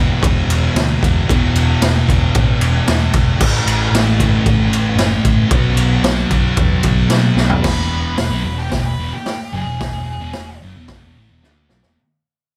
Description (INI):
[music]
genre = garage rock duo or trio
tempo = 113 BPM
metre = 4/4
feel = straight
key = E mixolydian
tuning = A4 = 439 Hz
[part]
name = thick fuzz guitar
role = riff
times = 0.0-12.0 s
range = E2 to D4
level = -20 LUFS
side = equal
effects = distortion
[part]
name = hollow-body short-scale picked electric bass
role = bass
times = 0.0-12.0 s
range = E1 to B2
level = -21 LUFS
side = equal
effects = none
[part]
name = raw garage drum kit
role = drums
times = 0.2-12.0 s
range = crash cymbal, hi-hat, kick drum, ride cymbal, snare drum, toms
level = -20 LUFS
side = equal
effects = none
[part]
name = octave-fuzz lead guitar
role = melody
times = 7.6-10.6 s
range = G4 to B4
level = -30 LUFS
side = equal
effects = distortion
[sound]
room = light reverb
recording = none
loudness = -15 LUFS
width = mono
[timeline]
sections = 0.0-7.7 A section; 7.7-12.0 B section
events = drum fill 7.4, 11.4-12.0; fade-out 7.7-12.0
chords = 0.0 E5; 3.4 A5; 5.5 B5; 7.7 E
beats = 0.23 0.76 | 1.29 1.82 2.35 2.88 | 3.41 3.94 4.47 5.00 | 5.53 6.06 6.59 7.12 | 7.66 8.19 8.72 9.26 | 9.80 10.34 10.88 11.42